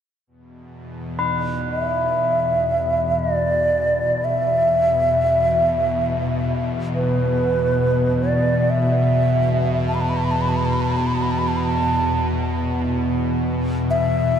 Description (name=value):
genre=world meditative, free-time meditation music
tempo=free time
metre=none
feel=none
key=unclear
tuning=A4 = 442 Hz
part: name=bowed-like drone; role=drone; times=0.6-14.4 s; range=E2 to B2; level=-21 LUFS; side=left 1 dB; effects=built-in reverb
part: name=tubular bells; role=texture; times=1.2-10.0 s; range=B4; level=-29 LUFS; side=left 3 dB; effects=none
part: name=breathy xiao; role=melody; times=1.7-14.4 s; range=B4 to B5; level=-20 LUFS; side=right 1 dB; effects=tape echo
room=wet church reverb, RT60 2.8 s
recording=dark, warm production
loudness=-18 LUFS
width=side -8 dB against mid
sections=0.3-14.4 A section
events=none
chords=none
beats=free time